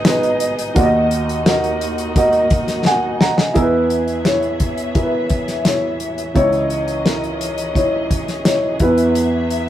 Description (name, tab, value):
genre	piano-driven pop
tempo	86 BPM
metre	4/4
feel	straight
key	unclear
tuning	A4 = 440 Hz
part	dark upright piano	accompaniment	0.0-9.7 s	G#1 to A#5	-17 LUFS	right 1 dB	none
part	dark studio string section	sustained chords	0.0-9.7 s	E3 to E5	-25 LUFS	left 1 dB	none
part	damped 70s drum kit	drums	0.0-9.7 s	hi-hat, kick drum, snare drum	-18 LUFS	left 1 dB	none
room	moderate studio reverb, RT60 0.6 s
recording	rough rehearsal-room recording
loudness	-15 LUFS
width	side -12 dB against mid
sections	0.0-3.6 A section; 3.6-9.7 B section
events	upright piano fill 2.2-3.6; drum fill 2.9-3.6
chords	0.0 G#m; 0.8 D#m; 3.6 E; 6.4 C#madd9; 8.8 E